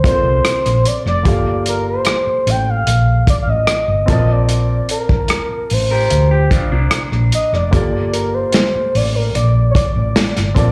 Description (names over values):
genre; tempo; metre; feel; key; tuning
lush 1970s-style soul; 74 BPM; 4/4; straight; unclear; A4 = 440 Hz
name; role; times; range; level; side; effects
expressive synth lead; melody; 0.0-10.7 s; Bb4 to G5; -21 LUFS; equal; chorus, slapback echo
warm grand piano; accompaniment; 0.0-10.7 s; Bb3 to A5; -27 LUFS; equal; slapback echo
warm soul drum kit; drums; 0.0-10.7 s; hi-hat, kick drum, rim click, snare drum; -19 LUFS; equal; none
hollow-body short-scale fingered electric bass; bass; 0.2-10.7 s; F1 to D2; -18 LUFS; equal; none
electric guitar through a small old amp; riff; 5.9-7.7 s; Bb3 to Bb4; -24 LUFS; equal; slapback echo
room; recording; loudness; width
light reverb; live gig heard through the venue's PA, club reverb; -15 LUFS; mono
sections
0.0-10.7 A section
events
none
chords
0.0 Bbmaj9; 1.3 Gm9; 4.1 Bbmaj9; 7.7 Gm9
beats
0.45 | 1.26 2.07 2.88 3.69 | 4.50 5.30 6.11 6.92 | 7.73 8.54 9.35 10.16